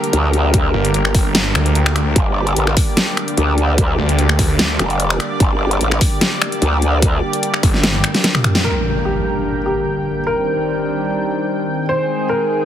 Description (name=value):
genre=heavy wobble dubstep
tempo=148 BPM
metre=4/4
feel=half-time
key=G minor, G phrygian from 8.6 s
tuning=A4 = 440 Hz
part: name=lush unison pad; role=sustained chords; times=0.0-12.7 s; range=D3 to G5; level=-21 LUFS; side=equal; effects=chorus, sidechain pumping
part: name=dubstep drum kit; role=drums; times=0.0-8.6 s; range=finger snaps, hi-hat, snare drum, toms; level=-18 LUFS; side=left 1 dB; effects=none
part: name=growl bass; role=bass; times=0.1-7.2 s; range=F1 to D2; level=-16 LUFS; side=equal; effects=chorus, overdrive
part: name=electronic kick drum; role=drums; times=0.5-7.7 s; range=none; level=-16 LUFS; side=equal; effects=none
part: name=snarling distorted saw bass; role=bass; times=0.7-4.8, 7.6-8.0 s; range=G1 to D2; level=-17 LUFS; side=equal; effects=distortion, overdrive
part: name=dark grand piano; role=melody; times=8.6-12.7 s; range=G4 to C5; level=-20 LUFS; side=equal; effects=digital delay
part: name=impact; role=sound effects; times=8.6-10.3 s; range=none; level=-25 LUFS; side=equal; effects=none
room=light reverb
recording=heavily compressed radio sound, multiband compression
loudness=-14 LUFS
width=side -10 dB against mid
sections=0.0-8.6 A section; 8.6-12.7 B section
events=drop 0.0-8.6; drum fill 7.8-8.6; band accent 8.5; impact 8.6-10.3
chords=0.0 Gm; 10.3 Cmadd9; 11.9 Abmaj7